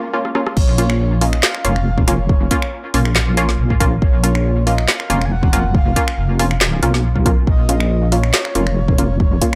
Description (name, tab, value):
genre	deep dubstep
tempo	139 BPM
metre	4/4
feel	swing 53% on 16ths, half-time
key	Bb phrygian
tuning	A4 = 441 Hz
part	filtered dub chord stab	stabs	0.1-9.5 s	Bb3 to F4	-24 LUFS	equal	chorus, cassette tape, dub echo
part	deep house drum kit	drums	0.2-9.6 s	crash cymbal, finger snaps, handclaps, hi-hat, rim click, snare drum	-22 LUFS	equal	none
part	breathy flute-like synth lead	melody	0.6-9.6 s	Db5 to Ab5	-29 LUFS	equal	subtle chorus, dub echo
part	deep soft wobble bass	bass	0.6-9.4 s	F1 to Cb2	-19 LUFS	equal	chorus
part	electronic kick drum	drums	0.6-9.5 s	none	-18 LUFS	equal	none
room	light reverb, digital ambience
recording	dry, gritty hardware recording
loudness	-16 LUFS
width	mono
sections	0.6-9.6 A section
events	break 0.0-0.6; drum fill 0.2-0.6; drop 0.6-9.6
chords	0.0 Bbm